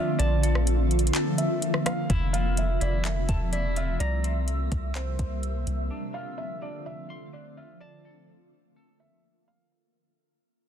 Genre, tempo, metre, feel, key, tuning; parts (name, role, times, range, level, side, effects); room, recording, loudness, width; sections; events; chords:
hip hop, atmospheric cloud-rap; 126 BPM; 4/4; half-time; F major; A4 = 441 Hz
felt-muted upright piano; melody; 0.0-9.7 s; C5 to F5; -35 LUFS; right 2 dB; low-pass filter, tape echo
shimmering ambient pad; sustained chords; 0.0-9.7 s; C3 to E5; -30 LUFS; equal; chorus, built-in reverb, phaser, sidechain pumping
semi-hollow electric guitar; arpeggios; 0.0-9.7 s; C4 to C6; -39 LUFS; left 3 dB; vibrato effect, low-pass filter, tape echo
soft 808-style bass; bass; 0.2-5.9 s; E1 to C2; -26 LUFS; equal
smooth R&B drum kit; drums; 0.2-5.8 s; handclaps, hi-hat, kick drum, rim click; -30 LUFS; equal
little or no reverb; dense, heavily limited modern master; -24 LUFS; side -9 dB against mid
0.0-2.1 A section; 2.1-9.7 B section
break 1.1-2.1; fade-out 2.1-9.7
0.2 Bbmaj7; 2.1 Fmaj7; 4.0 C7; 5.9 Dm7; 7.8 Bbmaj7